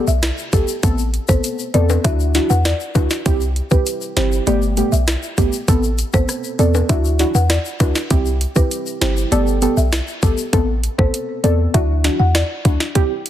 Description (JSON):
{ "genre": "dancehall", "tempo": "99 BPM", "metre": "4/4", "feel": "straight", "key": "unclear", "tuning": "A4 = 440 Hz", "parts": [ { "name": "deep mellow chord stab", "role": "accompaniment", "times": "0.0-13.1 s", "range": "A3 to A4", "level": "-21 LUFS", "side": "right 1 dB", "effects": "chorus, sidechain pumping" }, { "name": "folk marimba with medium mallets", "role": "melody", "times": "0.1-12.8 s", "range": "B4 to F#5", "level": "-25 LUFS", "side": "left 2 dB", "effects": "digital delay" }, { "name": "clean 808-style bass", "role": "bass", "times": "0.1-12.8 s", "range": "G1 to E2", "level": "-18 LUFS", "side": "equal", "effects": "none" }, { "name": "tube shaker and timbales", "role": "percussion", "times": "0.1-10.5 s", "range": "none", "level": "-28 LUFS", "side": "left 8 dB", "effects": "none" }, { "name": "island pop drum kit", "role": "drums", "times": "0.2-13.3 s", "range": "hi-hat, kick drum, rim click, snare drum", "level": "-18 LUFS", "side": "equal", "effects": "none" } ], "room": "little or no reverb", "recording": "dense, heavily limited modern master", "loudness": "-15 LUFS", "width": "side -12 dB against mid", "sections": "0.0-13.3 A section", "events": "none", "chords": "0.0 Gadd9; 0.8 Amadd9; 2.0 Dadd9; 3.3 C; 4.5 Gadd9; 5.7 Amadd9; 6.9 Dadd9; 8.1 C; 9.3 Gadd9; 10.5 Amadd9; 11.7 Dadd9", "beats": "0.23 | 0.83 1.44 2.05 2.65 | 3.26 3.86 4.47 5.08 | 5.68 6.29 6.89 7.50 | 8.11 8.71 9.32 9.93 | 10.53 11.14 11.74 12.35 | 12.96" }